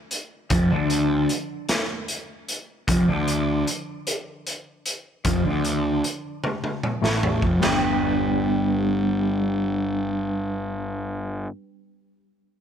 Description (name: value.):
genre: psychedelic rock.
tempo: 51 BPM (dotted quarters).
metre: 6/8.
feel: straight.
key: G mixolydian.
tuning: A4 = 441 Hz.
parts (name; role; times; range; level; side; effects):
raw garage drum kit; drums; 0.1-7.8 s; china cymbal, hi-hat, kick drum, snare drum, toms; -26 LUFS; equal; none.
twelve-string electric guitar; riff; 0.5-11.5 s; F2 to G4; -23 LUFS; equal; rotary speaker, double-tracked left and right, low-pass filter.
fuzz picked electric bass; bass; 0.5-11.5 s; F1 to D2; -28 LUFS; equal; overdrive.
room: light reverb, small room ambience.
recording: none.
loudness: -22 LUFS.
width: side -8 dB against mid.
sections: 0.0-7.6 A section; 7.6-10.0 B section.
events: filter sweep on clean electric guitar 0.0-7.6; drum fill 6.4-7.6.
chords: 0.0 F6; 7.6 G.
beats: | 0.50 1.69 | 2.88 4.07 | 5.25 6.44 | 7.62 8.81.